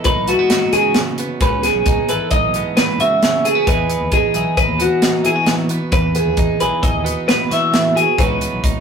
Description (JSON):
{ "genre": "math rock and midwest emo", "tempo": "133 BPM", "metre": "5/4", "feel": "straight", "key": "E major", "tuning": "A4 = 440 Hz", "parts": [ { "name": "twelve-string electric guitar", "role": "accompaniment", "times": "0.0-8.8 s", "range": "E2 to A4", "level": "-22 LUFS", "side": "right 3 dB", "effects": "none" }, { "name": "growling fingered electric bass", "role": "bass", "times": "0.0-8.7 s", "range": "G#1 to E3", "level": "-25 LUFS", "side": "left 1 dB", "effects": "overdrive" }, { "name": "crisp fusion drum kit", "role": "drums", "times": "0.0-8.7 s", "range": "hi-hat, kick drum, snare drum", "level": "-19 LUFS", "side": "equal", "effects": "none" }, { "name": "twelve-string electric guitar", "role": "arpeggios", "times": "0.1-8.6 s", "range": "F#4 to E5", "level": "-16 LUFS", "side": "equal", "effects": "none" } ], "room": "moderate small room reverb, RT60 0.5 s", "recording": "rough rehearsal-room recording, tube saturation", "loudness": "-14 LUFS", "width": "side -6 dB against mid", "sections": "0.0-8.8 A section", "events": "none", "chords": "0.0 C#m11; 3.7 Emaj9; 8.2 C#m11", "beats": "0.06 0.51 0.96 | 1.42 1.87 2.32 2.77 3.22 | 3.67 4.13 4.58 5.03 5.48 | 5.93 6.39 6.84 7.29 7.74 | 8.19 8.64" }